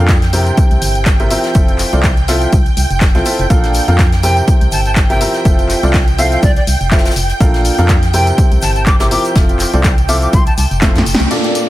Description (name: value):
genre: piano house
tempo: 123 BPM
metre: 4/4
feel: swing 56% on 16ths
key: F major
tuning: A4 = 440 Hz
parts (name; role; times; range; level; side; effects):
- analog string pad; sustained chords; 0.0-11.7 s; D5 to G5; -22 LUFS; right 3 dB; ensemble chorus, sidechain pumping
- clear baby grand piano; riff; 0.0-11.7 s; Bb2 to G5; -18 LUFS; equal; sidechain pumping, low-pass filter, digital delay
- organ-like FM bass; bass; 0.0-11.3 s; F1 to F2; -15 LUFS; equal; sidechain pumping
- electronic kick drum; drums; 0.1-10.9 s; none; -12 LUFS; equal; overdrive
- punchy analog drum machine; drums; 0.1-11.7 s; crash cymbal, handclaps, hi-hat, snare drum, tambourine; -19 LUFS; left 1 dB; overdrive
- soft brush drum kit; drums; 0.1-11.7 s; hi-hat, shaker, snare drum; -28 LUFS; left 1 dB; sidechain pumping on hats, high-pass filter on hats, low-pass filter on hats, high-pass filter on snare, low-pass filter on snare, sidechain pumping on perc, high-pass filter on perc, low-pass filter on perc, high-pass filter on room, low-pass filter on room
- breathy bright jazz flute; melody; 4.2-10.7 s; D5 to D6; -21 LUFS; left 1 dB; digital delay
- downlifter; sound effects; 11.3-11.7 s; none; -20 LUFS; right 2 dB; none
room: light reverb, small room reverb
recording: none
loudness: -10 LUFS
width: side -15 dB against mid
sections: 0.0-11.3 A section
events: drum fill 10.8-11.3; band accent 11.1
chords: 0.0 Bbmaj7; 0.6 C7; 1.6 Fmaj7; 3.5 Bbmaj7; 4.5 C7; 5.5 Fmaj7; 7.4 Bbmaj7; 8.4 C7; 9.4 Fmaj7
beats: 0.09 0.57 1.06 | 1.55 2.04 2.53 3.01 | 3.50 3.99 4.48 4.96 | 5.45 5.94 6.43 6.92 | 7.40 7.89 8.38 8.87 | 9.36 9.84 10.33 10.82 | 11.31